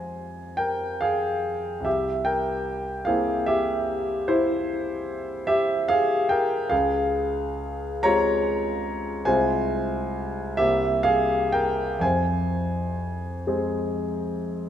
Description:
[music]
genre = classical, romantic nocturne for solo piano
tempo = 40-50 BPM (dotted quarters)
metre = 12/8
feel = rubato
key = F minor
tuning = A4 = 441 Hz
[part]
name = warm concert grand piano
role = solo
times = 0.0-14.7 s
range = C2 to Bb5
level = -22 LUFS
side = equal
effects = none
[sound]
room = moderate concert hall reverb, RT60 2.1 s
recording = minimal, uncompressed stereo recording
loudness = -22 LUFS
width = side -10 dB against mid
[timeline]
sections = 0.0-14.7 A section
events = none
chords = 0.0 Fm; 1.9 C7; 6.7 Dbmaj7; 9.3 Fm/C; 10.6 C5; 12.0 Fm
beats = 0.61 | 1.86 3.07 4.29 5.50 | 6.71 8.04 9.27 10.59 | 12.02 13.46

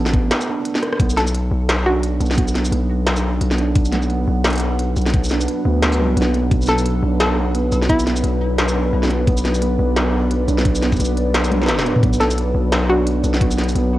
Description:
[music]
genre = half-time drum and bass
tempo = 174 BPM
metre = 4/4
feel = swing 58% on 16ths, half-time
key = B minor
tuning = A4 = 440 Hz
[part]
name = deep dark ambient pad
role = sustained chords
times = 0.0-14.0 s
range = F#3 to F#5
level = -24 LUFS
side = left 1 dB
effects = chorus, built-in reverb, sidechain pumping
[part]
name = felt-muted upright piano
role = arpeggios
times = 0.0-14.0 s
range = B2 to D4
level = -24 LUFS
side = right 5 dB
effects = analog delay
[part]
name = long sustained 808-style bass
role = bass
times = 0.0-14.0 s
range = A1 to D2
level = -19 LUFS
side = equal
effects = none
[part]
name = electronic kick drum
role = drums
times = 0.1-13.5 s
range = none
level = -18 LUFS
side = equal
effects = none
[part]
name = industrial drum kit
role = drums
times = 0.1-13.8 s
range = hi-hat, rim click, shaker, snare drum, toms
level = -22 LUFS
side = equal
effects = none
[part]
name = hollow square pluck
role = melody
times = 1.2-2.2, 6.7-8.4, 12.2-13.2 s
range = E4 to A4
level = -22 LUFS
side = left 1 dB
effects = chorus, cassette tape, tape echo
[sound]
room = light reverb, digital ambience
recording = home recording on cassette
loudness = -15 LUFS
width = side -15 dB against mid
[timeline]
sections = 1.0-14.0 A section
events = break 0.3-1.0; drum fill 0.8, 11.5-12.0; drop 1.0-14.0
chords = 0.0 B5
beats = 0.31 0.65 | 1.00 1.34 1.69 2.03 | 2.38 2.72 3.07 3.41 | 3.75 4.10 4.45 4.79 | 5.13 5.48 5.82 6.17 | 6.51 6.86 7.20 7.55 | 7.89 8.24 8.58 8.93 | 9.27 9.62 9.96 10.31 | 10.65 11.00 11.34 11.69 | 12.03 12.38 12.72 13.07 | 13.41 13.76

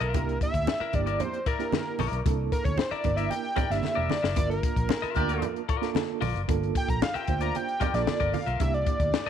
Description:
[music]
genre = funk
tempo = 114 BPM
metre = 4/4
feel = straight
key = G dorian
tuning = A4 = 443 Hz
[part]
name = fat analog lead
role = melody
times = 0.0-9.3 s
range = Bb4 to Bb5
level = -31 LUFS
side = equal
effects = none
[part]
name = clean electric guitar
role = accompaniment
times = 0.0-9.3 s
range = E4 to E5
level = -35 LUFS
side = left 12 dB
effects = spring reverb
[part]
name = vintage muted fingered electric bass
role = bass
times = 0.0-9.3 s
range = E1 to D2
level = -30 LUFS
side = equal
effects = none
[part]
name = compact cocktail drum kit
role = drums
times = 0.0-9.3 s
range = hi-hat, kick drum, snare drum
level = -29 LUFS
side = left 3 dB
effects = none
[part]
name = mellow reed electric piano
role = stabs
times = 0.1-9.1 s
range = Bb3 to C5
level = -34 LUFS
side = right 17 dB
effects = fast tremolo, slapback echo
[part]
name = congas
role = percussion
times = 0.1-9.3 s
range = none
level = -35 LUFS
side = right 9 dB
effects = none
[part]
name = bright horn section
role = second line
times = 5.2-5.5 s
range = G4 to D5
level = -33 LUFS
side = left 1 dB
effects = none
[sound]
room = light reverb, studio reverb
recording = 1960s-style stereo with parts hard left and right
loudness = -25 LUFS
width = side -9 dB against mid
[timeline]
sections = 0.0-9.3 A section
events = analog synth lead solo 0.0-9.3; drum fill 3.8-4.4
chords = 0.1 C9 (rootless); 4.4 Gm7; 8.6 C9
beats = | 0.14 0.67 1.20 1.73 | 2.26 2.79 3.31 3.84 | 4.37 4.90 5.43 5.96 | 6.49 7.01 7.54 8.07 | 8.60 9.13

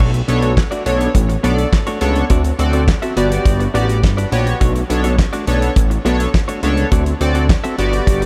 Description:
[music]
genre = early-eighties boogie funk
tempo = 104 BPM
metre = 4/4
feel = straight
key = B minor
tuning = A4 = 438 Hz
[part]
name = semi-hollow electric guitar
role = riff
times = 0.0-8.2 s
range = A3 to E5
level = -26 LUFS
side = equal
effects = subtle chorus
[part]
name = fat analog bass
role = bass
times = 0.0-8.3 s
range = G1 to D2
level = -19 LUFS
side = equal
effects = none
[part]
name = damped 70s drum kit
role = drums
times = 0.0-8.3 s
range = crash cymbal, handclaps, hi-hat, kick drum, snare drum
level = -20 LUFS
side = equal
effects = none
[part]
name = chorused polysynth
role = accompaniment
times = 0.3-8.2 s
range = B3 to D5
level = -22 LUFS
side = equal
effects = none
[sound]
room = light reverb, small room reverb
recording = none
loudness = -16 LUFS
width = mono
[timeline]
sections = 0.0-8.3 A section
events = none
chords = 0.0 Bm9; 2.3 D7; 3.2 Gmaj7; 4.6 Bm9; 6.9 D7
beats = 0.57 1.15 1.73 | 2.30 2.88 3.46 4.03 | 4.61 5.19 5.76 6.34 | 6.92 7.50 8.07

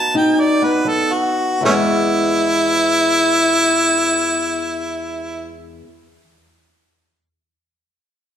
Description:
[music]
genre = acoustic country blues, solo or duo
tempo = 76-89 BPM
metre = 4/4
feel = swing 67% on 8ths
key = E major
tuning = A4 = 440 Hz
[part]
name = clear harmonica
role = melody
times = 0.0-5.6 s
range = A3 to A5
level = -16 LUFS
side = equal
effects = none
[part]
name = fingerpicked old ladder-braced acoustic guitar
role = accompaniment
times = 0.0-5.9 s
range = E2 to G#4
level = -20 LUFS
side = left 1 dB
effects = none
[sound]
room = wet recital hall reverb, RT60 1.6 s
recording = recorded in a church or concert hall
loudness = -14 LUFS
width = side -9 dB against mid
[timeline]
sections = 0.0-1.6 A section; 1.6-4.8 B section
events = slowing down 0.0-1.6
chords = 0.0 B; 1.6 E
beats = 0.14 0.85 | 1.61 2.40 3.20 3.99

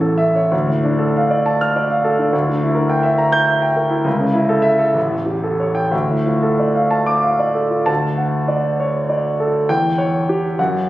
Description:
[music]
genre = classical, romantic character piece for solo piano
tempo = 58-70 BPM (dotted quarters)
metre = 6/8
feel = rubato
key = D minor, D major from 7.9 s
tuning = A4 = 442 Hz
[part]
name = warm concert grand piano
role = solo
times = 0.0-10.9 s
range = A1 to G6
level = -15 LUFS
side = equal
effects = none
[sound]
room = wet scoring stage reverb, RT60 1.8 s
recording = recorded on a phone in the room, studio reverb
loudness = -15 LUFS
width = side -15 dB against mid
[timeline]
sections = 0.0-7.9 A section; 7.9-10.9 B section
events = none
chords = 0.0 A; 0.5 Dm; 2.3 Em7b5/D; 4.1 A/C#; 5.0 A7; 5.9 Dm; 7.9 D; 9.7 C#dim/E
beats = | 0.53 1.46 | 2.33 3.19 | 4.06 4.96 | 5.92 6.91 | 7.89 8.80 | 9.69 10.58

